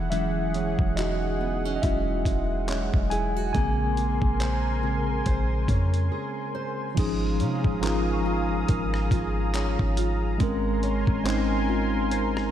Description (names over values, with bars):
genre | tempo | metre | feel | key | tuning
contemporary R&B | 70 BPM | 4/4 | swing 58% on 16ths | unclear | A4 = 440 Hz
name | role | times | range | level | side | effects
warm analog pad | sustained chords | 0.0-12.5 s | G#4 to Eb6 | -33 LUFS | equal | chorus, sidechain pumping
nylon-string guitar | arpeggios | 0.0-12.5 s | E3 to C5 | -33 LUFS | right 8 dB | diffuse ambient delay
clean 808-style bass | bass | 0.0-12.5 s | E1 to C3 | -27 LUFS | equal | none
mellow tine electric piano | accompaniment | 0.1-12.5 s | Db3 to G#5 | -28 LUFS | left 1 dB | medium stereo tremolo
dusty soul sampler-style drum kit | drums | 0.1-12.5 s | crash cymbal, handclaps, hi-hat, kick drum, rim click | -29 LUFS | equal | none
celesta | texture | 7.8-8.9 s | Bb5 to Db6 | -43 LUFS | left 1 dB | none
room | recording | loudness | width
light reverb, digital ambience | none | -23 LUFS | side -10 dB against mid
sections
0.0-7.0 A section; 7.0-12.5 B section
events
tine electric piano solo 0.0-7.0; break 6.1-7.0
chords
0.0 E69; 3.5 Bbm9; 7.0 Eb9sus4/Ab